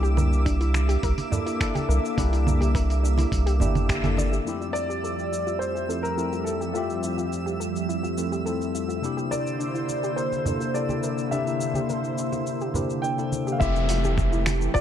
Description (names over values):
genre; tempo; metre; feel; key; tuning
sunset chillout; 105 BPM; 4/4; straight; F major; A4 = 441 Hz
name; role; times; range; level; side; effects
tine electric piano; accompaniment; 0.0-14.8 s; F2 to E5; -30 LUFS; moving between left 7 dB and right 8 dB; overdrive, auto-pan, tape echo
lush unison pad; sustained chords; 0.0-14.8 s; D3 to D6; -32 LUFS; right 1 dB; chorus, phaser
soft round pluck; arpeggios; 0.0-14.8 s; D4 to D5; -35 LUFS; left 1 dB; chorus, tape echo
round analog bass; bass; 0.0-4.4, 13.6-14.8 s; F1 to C2; -22 LUFS; equal; none
dusty soul sampler-style drum kit; drums; 0.0-14.8 s; congas, finger snaps, hi-hat, shaker; -33 LUFS; right 2 dB; overdrive
twinkling granular texture; texture; 0.0-13.6 s; E6; -40 LUFS; right 1 dB; built-in reverb
congas; percussion; 0.2-4.3, 9.3-14.6 s; none; -31 LUFS; right 2 dB; none
electronic kick drum; drums; 0.5-4.0, 13.6-14.8 s; none; -27 LUFS; equal; overdrive
warm baby grand piano; melody; 4.7-14.8 s; F4 to G5; -30 LUFS; left 1 dB; tape echo
downlifter; sound effects; 13.6-14.8 s; none; -32 LUFS; right 1 dB; none
room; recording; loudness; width
light reverb; dark, warm production; -23 LUFS; side -10 dB against mid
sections
0.0-4.5 A section; 4.5-13.6 B section; 13.6-14.8 C section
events
band accent 3.9; filter sweep on synth arpeggio sound 4.5-13.6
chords
0.0 C9; 4.5 Fmaj9; 9.0 C9; 13.6 Fmaj9